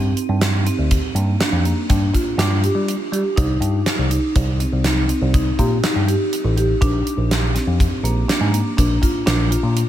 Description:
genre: progressive instrumental, band music in an uneven meter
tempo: 122 BPM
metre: 7/4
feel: straight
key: C minor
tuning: A4 = 439 Hz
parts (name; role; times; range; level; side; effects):
- marimba with medium mallets; arpeggios; 0.0-9.9 s; Bb3 to G4; -22 LUFS; right 1 dB; none
- bell-like tine electric piano; bass; 0.0-9.8 s; A1 to G3; -19 LUFS; equal; auto-pan
- gated 80s drum kit; drums; 0.2-9.9 s; hi-hat, kick drum, snare drum; -21 LUFS; equal; none
room: moderate huge ambient reverb, RT60 8.2 s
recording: dreamy mix soaked in reverb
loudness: -16 LUFS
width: side -12 dB against mid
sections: 0.0-9.9 A section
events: none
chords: 0.0 G5; 3.4 Cm; 6.8 Bb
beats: 0.42 0.91 1.41 1.90 2.39 2.88 | 3.37 3.86 4.36 4.85 5.34 5.83 6.32 | 6.81 7.30 7.79 8.28 8.77 9.26 9.75

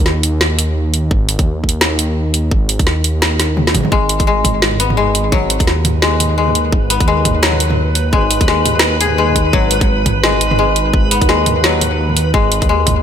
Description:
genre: half-time drum and bass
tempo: 171 BPM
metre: 4/4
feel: swing 59% on 16ths, half-time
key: G# minor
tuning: A4 = 440 Hz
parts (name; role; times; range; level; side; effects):
- dark detuned saw bass; bass; 0.0-13.0 s; G#1 to G#2; -17 LUFS; equal; none
- drum and bass drum kit; drums; 0.1-13.0 s; hi-hat, snare drum, toms; -16 LUFS; right 1 dB; none
- electronic kick drum; drums; 1.1-12.9 s; none; -15 LUFS; equal; none
- koto; arpeggios; 3.9-13.0 s; F#3 to G#4; -16 LUFS; left 4 dB; ping-pong delay
- backwards swelling texture; texture; 5.7-13.0 s; B4; -22 LUFS; right 2 dB; built-in reverb
room: light reverb, digital ambience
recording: none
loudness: -12 LUFS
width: side -8 dB against mid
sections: 0.0-13.0 A section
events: drum fill 3.4-3.9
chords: 0.0 G#m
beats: 0.06 0.41 0.76 | 1.11 1.46 1.81 2.17 | 2.52 2.87 3.22 3.57 | 3.92 4.27 4.62 4.97 | 5.32 5.67 6.03 6.38 | 6.73 7.08 7.43 7.78 | 8.13 8.48 8.83 9.18 | 9.53 9.88 10.24 10.59 | 10.94 11.29 11.64 11.99 | 12.34 12.69

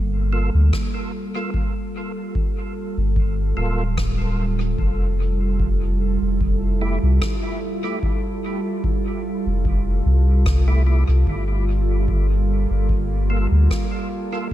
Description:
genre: ambient dub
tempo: 74 BPM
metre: 4/4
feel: swing 54% on 16ths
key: G dorian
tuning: A4 = 441 Hz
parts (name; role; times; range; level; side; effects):
- warbly tape-like pad; sustained chords; 0.0-14.5 s; G3 to A4; -26 LUFS; right 2 dB; chorus, built-in reverb
- warm sub bass; bass; 0.0-13.7 s; D1 to D2; -18 LUFS; equal; none
- percussive tonewheel organ; stabs; 0.3-14.5 s; A3 to A4; -32 LUFS; right 3 dB; overdrive, chorus vibrato, slow rotary speaker, dub echo
- electronic kick drum; drums; 0.7-14.5 s; none; -25 LUFS; equal; none
- rim click; drums; 0.7-13.9 s; none; -35 LUFS; equal; dub echo
room: little or no reverb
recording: none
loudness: -18 LUFS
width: side -13 dB against mid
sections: 0.0-14.5 A section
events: none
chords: 0.0 Gm9; 4.8 Fmaj9; 11.3 Gm9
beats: 0.73 | 1.54 2.35 3.16 3.98 | 4.79 5.60 6.41 7.22 | 8.03 8.84 9.65 10.46 | 11.27 12.08 12.89 13.70 | 14.52

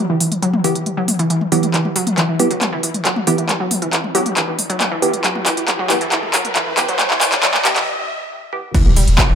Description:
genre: driving peak-time techno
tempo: 137 BPM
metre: 4/4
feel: straight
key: E minor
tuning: A4 = 436 Hz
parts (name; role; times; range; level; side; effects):
- wide unison pluck; riff; 0.1-9.3 s; E3 to G3; -21 LUFS; equal; vintage 12-bit sampler grit, sidechain pumping, ping-pong delay
- techno drum kit; drums; 0.2-9.3 s; crash cymbal, handclaps, hi-hat, ride cymbal, toms; -18 LUFS; equal; overdrive
- wavetable chord stab; stabs; 0.6-8.6 s; E3 to G4; -22 LUFS; right 2 dB; sidechain pumping, dub echo
- riser and impact; sound effects; 3.7-9.3 s; none; -24 LUFS; equal; none
- electronic kick drum; drums; 8.7-9.3 s; none; -14 LUFS; equal; overdrive
- saturated sub bass; bass; 8.9-9.3 s; E1; -14 LUFS; equal; overdrive, sidechain pumping, low-pass filter
room: moderate plate reverb, RT60 1.3 s, digital ambience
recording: high-pass filter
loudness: -14 LUFS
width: side -8 dB against mid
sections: 0.0-8.7 A section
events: build-up 0.0-8.7; filter sweep on synth arpeggio sound 0.0-8.7; filter sweep 0.0-8.7; drum fill 1.7-7.9; riser 3.7-7.9; break 7.9-8.7; impact 8.7-9.3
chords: 0.0 Em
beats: 0.42 0.86 1.30 | 1.74 2.18 2.62 3.05 | 3.49 3.93 4.37 4.80 | 5.24 5.68 6.12 6.56 | 6.99 7.43 7.87 8.31 | 8.75 9.18

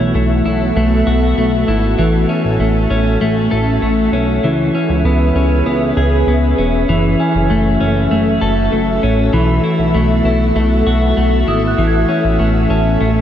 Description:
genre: dream pop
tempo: 98 BPM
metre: 4/4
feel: straight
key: F# minor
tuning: A4 = 440 Hz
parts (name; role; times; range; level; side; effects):
- ethereal airy pad; sustained chords; 0.0-13.2 s; B3 to E5; -18 LUFS; equal; ensemble chorus, built-in reverb
- clean electric guitar; arpeggios; 0.0-13.2 s; E3 to A4; -16 LUFS; left 1 dB; wide subtle chorus, digital delay
- chorused synth bass; bass; 0.0-13.2 s; E1 to C#2; -16 LUFS; equal; none
- celesta; texture; 7.2-13.2 s; G#5 to G#6; -26 LUFS; right 3 dB; digital delay
room: moderate huge ambient reverb, RT60 4.9 s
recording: dark, warm production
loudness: -12 LUFS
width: side -10 dB against mid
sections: 0.0-13.2 A section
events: none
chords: 0.0 B7sus4; 2.0 F#m7/A; 4.4 C#m7; 6.9 F#m7; 9.3 B7sus4; 11.8 F#m7/A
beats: 0.15 0.76 1.37 | 1.99 2.60 3.21 3.82 | 4.44 5.05 5.66 6.27 | 6.88 7.50 8.11 8.72 | 9.33 9.95 10.56 11.17 | 11.78 12.39 13.01

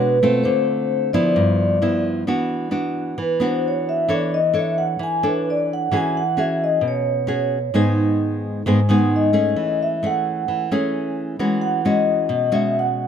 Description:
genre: bossa nova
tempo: 132 BPM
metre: 4/4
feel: straight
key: E major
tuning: A4 = 440 Hz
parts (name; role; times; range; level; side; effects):
- vibraphone with soft mallets; melody; 0.0-13.1 s; B4 to G#5; -20 LUFS; left 1 dB; none
- nylon-string guitar; accompaniment; 0.0-13.1 s; G2 to C#5; -20 LUFS; equal; none
room: light reverb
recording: none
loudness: -18 LUFS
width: side -8 dB against mid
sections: 0.0-2.3 A section; 2.3-13.1 B section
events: vibraphone solo 2.3-13.1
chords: 0.4 Dm7; 1.4 G6; 2.3 D69/E; 4.1 E13sus4; 5.9 E69; 7.7 G#m; 9.6 F#m9/E; 11.4 E69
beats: | 0.44 0.90 1.35 1.81 | 2.27 2.72 3.18 3.63 | 4.09 4.54 5.00 5.46 | 5.91 6.37 6.83 7.28 | 7.74 8.19 8.65 9.10 | 9.56 10.02 10.47 10.92 | 11.38 11.83 12.29 12.74

